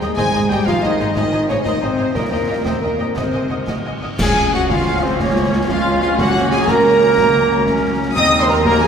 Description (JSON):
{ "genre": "cinematic, heroic adventure film score", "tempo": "121 BPM (dotted quarters)", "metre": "12/8", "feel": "straight", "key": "unclear", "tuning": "A4 = 440 Hz", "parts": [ { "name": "warm symphonic violin section", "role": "second line", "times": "0.0-8.9 s", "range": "C5 to Eb6", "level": "-28 LUFS", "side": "left 1 dB", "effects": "none" }, { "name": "warm symphonic viola section", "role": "accompaniment", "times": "0.0-8.9 s", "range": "F3 to Eb5", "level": "-25 LUFS", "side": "equal", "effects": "none" }, { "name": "rich symphonic double bass section", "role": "bass", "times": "0.0-8.9 s", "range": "Ab1 to Eb2", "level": "-26 LUFS", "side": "right 1 dB", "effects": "none" }, { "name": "concert snare drum, concert bass drum and clash cymbals", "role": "drums", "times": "0.0-8.9 s", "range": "none", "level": "-24 LUFS", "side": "right 1 dB", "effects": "none" }, { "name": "warm symphonic violin section", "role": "melody", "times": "0.2-8.9 s", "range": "Bb4 to Eb6", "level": "-25 LUFS", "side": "left 3 dB", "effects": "none" }, { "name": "bright clarinet", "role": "second line", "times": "0.2-8.9 s", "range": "Ab3 to Ab5", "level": "-24 LUFS", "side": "left 2 dB", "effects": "none" }, { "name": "dark French horn section", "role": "sustained chords", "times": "0.2-8.9 s", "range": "Bb3 to Eb5", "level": "-19 LUFS", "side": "right 1 dB", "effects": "none" }, { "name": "rich symphonic cello section", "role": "bass", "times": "0.2-8.9 s", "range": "Db2 to Ab3", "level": "-24 LUFS", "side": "right 3 dB", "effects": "none" }, { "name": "cymbal swell, clash cymbals and concert bass drum", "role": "percussion", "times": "0.2-4.8 s", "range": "none", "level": "-26 LUFS", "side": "equal", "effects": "none" }, { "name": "mellow concert flute", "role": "second line", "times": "4.2-8.9 s", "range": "C5 to Eb6", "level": "-24 LUFS", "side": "left 1 dB", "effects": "none" }, { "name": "mellow trumpet section", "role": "stabs", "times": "4.2-8.9 s", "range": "C4 to Eb5", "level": "-21 LUFS", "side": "equal", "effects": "none" } ], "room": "wet church reverb, RT60 3.5 s", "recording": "recorded in a church or concert hall", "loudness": "-14 LUFS", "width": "side -7 dB against mid", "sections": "0.0-4.2 A section; 4.2-8.9 B section", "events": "band accent 4.2-4.5", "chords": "0.2 Abadd9; 2.2 Eb; 3.2 Ab7; 4.2 Db; 6.2 Gb/Db; 8.2 Ebm" }